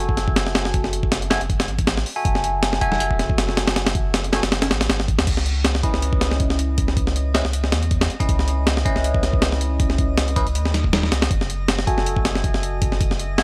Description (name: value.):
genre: drum and bass, jungle.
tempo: 159 BPM.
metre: 4/4.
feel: swing 54% on 16ths.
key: C# minor.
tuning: A4 = 435 Hz.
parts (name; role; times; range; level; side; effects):
bell-like tine electric piano; stabs; 0.0-13.4 s; C#4 to G#5; -28 LUFS; equal; phaser, dub echo.
saturated sub bass; bass; 0.0-13.4 s; F#1 to E2; -26 LUFS; equal; tube saturation.
breakbeat sampler-style drum kit; drums; 0.1-13.4 s; crash cymbal, hi-hat, kick drum, snare drum; -22 LUFS; equal; none.
drifting glass-harmonics texture; texture; 6.6-13.4 s; D#5 to D#6; -40 LUFS; equal; chorus, built-in reverb.
room: light reverb.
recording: dry, gritty hardware recording.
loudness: -20 LUFS.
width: mono.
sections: 0.0-5.3 A section; 5.3-13.4 A section.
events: drop 0.0-5.3, 5.3-13.4.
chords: 0.0 F#m9; 5.3 C#m9; 11.3 F#m9.